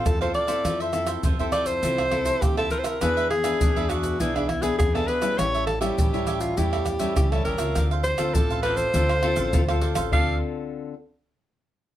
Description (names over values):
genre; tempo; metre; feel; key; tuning
samba and choro; 101 BPM; 4/4; straight; D minor; A4 = 440 Hz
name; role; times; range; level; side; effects
warm alto saxophone; melody; 0.0-10.4 s; D4 to F5; -25 LUFS; equal; none
cavaquinho; accompaniment; 0.0-10.4 s; D4 to F5; -32 LUFS; right 7 dB; none
nylon-string guitar; accompaniment; 0.0-10.9 s; A2 to A4; -30 LUFS; left 6 dB; none
upright bass; bass; 0.1-10.4 s; A1 to F2; -28 LUFS; equal; none
tube shaker, surdo, pandeiro and tamborim; percussion; 0.1-10.3 s; none; -26 LUFS; right 1 dB; none
room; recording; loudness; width
light reverb; none; -21 LUFS; side -12 dB against mid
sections
0.0-7.8 A section; 7.8-10.1 B section; 10.1-12.0 C section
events
none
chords
0.0 Dm7; 0.7 Fmaj7; 3.0 E7; 5.4 A7; 7.8 Dm7